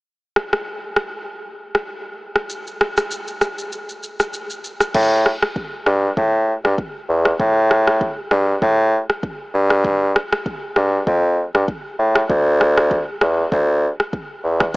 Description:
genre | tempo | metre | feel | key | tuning
afrobeats | 98 BPM | 4/4 | swing 55% on 16ths | unclear | A4 = 440 Hz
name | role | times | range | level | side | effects
afro-pop drum kit | drums | 0.4-14.7 s | crash cymbal, kick drum, rim click, shaker | -21 LUFS | equal | none
clear bassoon | bass | 4.9-14.7 s | D2 to A2 | -15 LUFS | equal | none
room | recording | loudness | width
light reverb | small speaker sound | -16 LUFS | side -27 dB against mid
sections
0.0-4.9 A section; 4.9-14.8 B section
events
hi-hats muted 4.9-14.7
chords
none

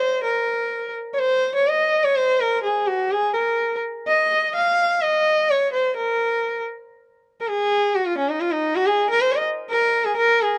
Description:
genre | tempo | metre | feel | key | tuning
indian classical | 127 BPM | 3/4 | straight | Eb raga kafi | A4 = 440 Hz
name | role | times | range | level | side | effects
warm sarangi | solo | 0.0-10.6 s | Db4+22c to F5 | -21 LUFS | equal | none
room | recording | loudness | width
light reverb | none | -21 LUFS | mono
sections
0.2-10.6 A section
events
speeding up 0.0-10.6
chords
none

